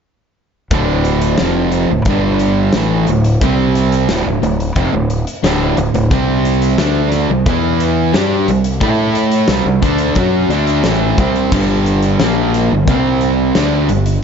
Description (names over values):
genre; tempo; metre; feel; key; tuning
classic rock; 89 BPM; 4/4; straight; unclear; A4 = 439 Hz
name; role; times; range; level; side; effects
cranked stack guitar; riff; 0.7-14.2 s; D2 to A4; -16 LUFS; right 11 dB; overdrive, spring reverb
overdriven semi-hollow guitar; riff; 0.7-14.2 s; D2 to A4; -17 LUFS; left 10 dB; none
growling fingered electric bass; bass; 0.7-14.2 s; D1 to A2; -18 LUFS; equal; overdrive
huge arena drum kit; drums; 0.7-14.2 s; crash cymbal, hi-hat, kick drum, snare drum; -20 LUFS; left 1 dB; none
room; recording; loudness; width
light reverb; nothing above 7.6 kHz; -12 LUFS; side -6 dB against mid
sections
0.7-14.2 A section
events
none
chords
0.7 D5; 2.1 G5; 2.7 D5; 3.4 C5; 4.1 D5; 6.1 C5; 7.5 E5; 8.1 C5; 8.8 A5; 9.5 C5; 11.5 G5; 12.9 C5; 13.6 G5